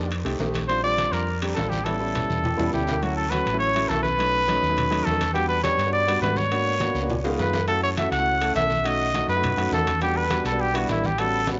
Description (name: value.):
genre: Afro-Cuban jazz.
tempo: 206 BPM.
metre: 4/4.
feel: straight.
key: unclear.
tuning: A4 = 440 Hz.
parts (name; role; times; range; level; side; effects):
warm trumpet; melody; 0.0-11.5 s; E4 to F#5; -26 LUFS; equal; none.
warm concert grand piano; accompaniment; 0.0-11.6 s; F#3 to A4; -30 LUFS; equal; none.
hollow-body short-scale fingered electric bass; bass; 0.0-11.6 s; A1 to G#2; -32 LUFS; equal; none.
congas; percussion; 0.1-11.6 s; none; -36 LUFS; equal; none.
guiro; percussion; 0.1-11.6 s; none; -42 LUFS; equal; none.
timbales; percussion; 0.1-11.6 s; none; -36 LUFS; equal; none.
room: moderate plate reverb, RT60 2.4 s.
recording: nothing above 7.6 kHz.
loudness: -23 LUFS.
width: mono.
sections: 0.0-3.0 A section; 3.0-11.6 B section.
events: drum fill 1.9-3.0, 7.1-7.7.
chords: 0.1 F7; 0.7 Bb6; 1.9 A9; 3.0 Dmaj9; 4.2 B7; 5.4 Em9; 6.5 G#m7b5; 7.1 C#7; 7.7 F#m7; 8.8 B7; 10.0 Em9.